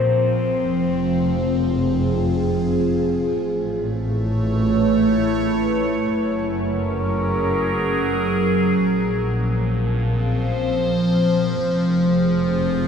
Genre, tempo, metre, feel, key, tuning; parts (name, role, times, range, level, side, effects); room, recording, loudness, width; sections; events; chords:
ambient; 66 BPM; 3/4; straight; A4 = 440 Hz
evolving wavetable pad; sustained chords; 0.0-12.9 s; Bb2 to C#5; -19 LUFS; equal; phaser, built-in reverb, shimmer reverb
dark chamber double bass section; bass; 0.0-12.9 s; F1 to Bb1; -25 LUFS; equal
wet huge ambient reverb, RT60 8.1 s; -18 LUFS; side -7 dB against mid
0.0-12.9 A section
0.0 Bbsus2; 0.6 Fm; 3.4 Amaj7; 6.1 Gb; 8.8 Bbsus2; 11.6 Fm